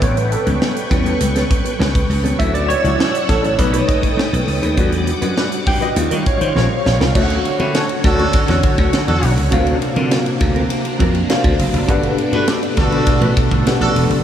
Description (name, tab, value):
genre	polished 1980s jazz-funk pop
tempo	101 BPM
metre	4/4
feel	straight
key	D major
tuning	A4 = 440 Hz
part	tine electric piano	accompaniment	0.0-14.2 s	F#3 to G5	-21 LUFS	left 1 dB	overdrive, medium stereo tremolo, analog chorus
part	string machine, full ensemble	sustained chords	0.0-14.2 s	B2 to E6	-22 LUFS	equal	phaser, ensemble chorus
part	mellow electric guitar	riff	0.0-14.1 s	F#3 to B4	-24 LUFS	right 2 dB	analog chorus
part	slap bass	bass	0.0-14.2 s	E1 to Eb3	-18 LUFS	equal	none
part	tight funk drum kit	drums	0.0-14.2 s	crash cymbal, hi-hat, kick drum, ride cymbal, snare drum	-20 LUFS	equal	none
part	warm horn section	second line	7.6-14.0 s	D4 to D5	-22 LUFS	right 1 dB	analog delay
room	moderate huge ambient reverb, RT60 4.9 s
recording	dreamy mix soaked in reverb, studio reverb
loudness	-14 LUFS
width	side -10 dB against mid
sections	0.0-7.1 A section; 7.1-14.2 B section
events	tine electric piano solo 0.0-7.1; drum fill 6.6-7.1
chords	0.0 A9; 2.4 Dmaj9; 3.6 B7b13; 4.8 Em9; 6.0 Eb9; 7.1 Dmaj7; 9.5 D7alt; 11.9 Gmaj9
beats	| 0.02 0.61 1.21 1.80 | 2.40 2.99 3.59 4.18 | 4.78 5.37 5.96 6.56 | 7.15 7.74 8.33 8.93 | 9.52 10.11 10.70 11.29 | 11.89 12.48 13.07 13.66